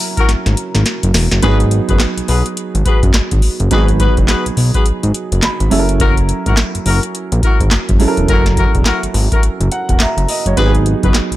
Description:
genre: R&B, new jack swing.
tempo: 105 BPM.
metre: 4/4.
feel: swing 61% on 16ths.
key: G# minor.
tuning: A4 = 440 Hz.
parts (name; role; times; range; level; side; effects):
mellow horn-like synth lead; melody; 0.0-0.9 s; A#5; -37 LUFS; left 1 dB; none.
warm baby grand piano; accompaniment; 0.0-11.4 s; F#3 to B5; -19 LUFS; right 4 dB; none.
booming analog drum machine; drums; 0.0-11.4 s; handclaps, hi-hat, kick drum, snare drum, tambourine; -14 LUFS; equal; none.
warm horn section; stabs; 0.2-11.1 s; E4 to B4; -21 LUFS; left 4 dB; ping-pong delay.
fat analog bass; bass; 0.3-11.4 s; E1 to B1; -15 LUFS; equal; none.
room: digital ambience.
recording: none.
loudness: -11 LUFS.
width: side -15 dB against mid.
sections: 0.0-1.4 A section; 1.4-11.4 B section.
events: drum fill 0.3-1.4; grand piano fill 5.1-6.0, 9.4-10.6.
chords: 0.0 F#7; 1.4 G#m7; 5.7 F#7; 10.6 G#m7.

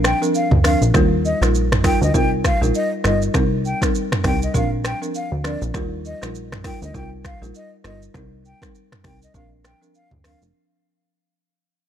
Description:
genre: afrobeats.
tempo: 100 BPM.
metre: 4/4.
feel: swing 58% on 16ths.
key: Bb major.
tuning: A4 = 440 Hz.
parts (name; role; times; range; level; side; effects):
folk marimba with medium hard mallets; accompaniment; 0.0-10.4 s; F3 to Bb4; -23 LUFS; equal; none.
plucky analog bass; bass; 0.0-10.5 s; F1 to Eb2; -21 LUFS; equal; none.
deep house drum kit; drums; 0.0-10.5 s; finger snaps, hi-hat, kick drum, rim click, shaker, toms; -21 LUFS; equal; none.
breathy mellow silver concert flute; melody; 0.1-10.4 s; D5 to G5; -26 LUFS; left 2 dB; none.
room: digital ambience.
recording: dark, warm production.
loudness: -16 LUFS.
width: side -10 dB against mid.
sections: 0.0-10.5 A section.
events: fade-out 0.0-10.5.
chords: 0.0 Bbadd9; 0.9 Ebadd9; 3.3 Cm7; 4.5 Bbadd9; 5.7 Ebadd9; 8.1 Cm7; 9.3 Bbadd9.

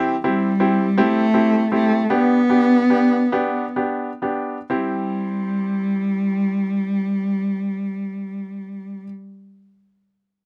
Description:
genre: pop.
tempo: 41-56 BPM (dotted quarters).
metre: 6/8.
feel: straight.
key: C major.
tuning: A4 = 440 Hz.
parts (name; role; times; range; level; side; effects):
bright grand piano; accompaniment; 0.0-9.0 s; B3 to G4; -24 LUFS; equal; none.
rich cello; melody; 0.2-9.1 s; G3 to B3; -22 LUFS; equal; none.
room: light reverb.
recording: dry, close 1970s-style studio recording.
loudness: -20 LUFS.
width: mono.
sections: 0.0-4.7 A section; 4.7-10.5 B section.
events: slowing down 0.0-4.7.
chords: 0.0 C; 2.1 G; 4.7 C.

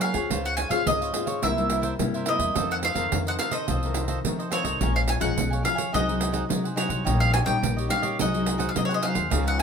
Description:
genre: samba and choro.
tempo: 107 BPM.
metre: 4/4.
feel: straight.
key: unclear.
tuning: A4 = 440 Hz.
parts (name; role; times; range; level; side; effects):
bowl-back mandolin; melody; 0.0-9.6 s; Db5 to Ab5; -27 LUFS; left 1 dB; none.
cavaquinho; accompaniment; 0.0-9.6 s; Eb4 to Ab5; -32 LUFS; right 4 dB; none.
nylon-string guitar; accompaniment; 0.0-9.6 s; F2 to Ab4; -29 LUFS; left 4 dB; none.
upright bass; bass; 0.0-9.6 s; Bb1 to Gb3; -28 LUFS; left 1 dB; none.
pandeiro; percussion; 0.0-9.6 s; none; -30 LUFS; right 7 dB; none.
room: moderate studio reverb, RT60 0.5 s.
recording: minimal, uncompressed stereo recording.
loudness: -22 LUFS.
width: side -6 dB against mid.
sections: 0.0-9.6 A section.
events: none.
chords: 0.3 Dbmaj7; 1.4 C7; 2.6 F7; 4.8 Bbm7; 5.9 Ab7/C; 7.1 Eb7/Bb; 8.2 Ab7/C.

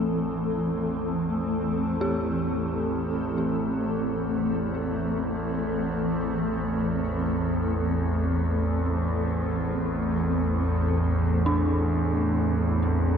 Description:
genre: dark ambient drone.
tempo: free time.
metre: none.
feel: none.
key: A minor.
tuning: A4 = 443 Hz.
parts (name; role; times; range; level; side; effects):
granular cloud pad; sustained chords; 0.0-13.2 s; E3 to A4; -27 LUFS; equal; built-in reverb.
dark detuned synth bell; arpeggios; 0.0-13.2 s; D4 to G4; -33 LUFS; equal; chorus, phaser, tape echo.
overtone-sweeping drone; drone; 0.0-13.2 s; A1 to E2; -27 LUFS; right 1 dB; chorus, built-in reverb.
room: wet cathedral reverb, RT60 5.2 s.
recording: cassette tape.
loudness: -24 LUFS.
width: side -7 dB against mid.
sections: 0.0-13.2 A section.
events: fade-in on synth drone 0.0-13.2.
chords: 0.0 Am.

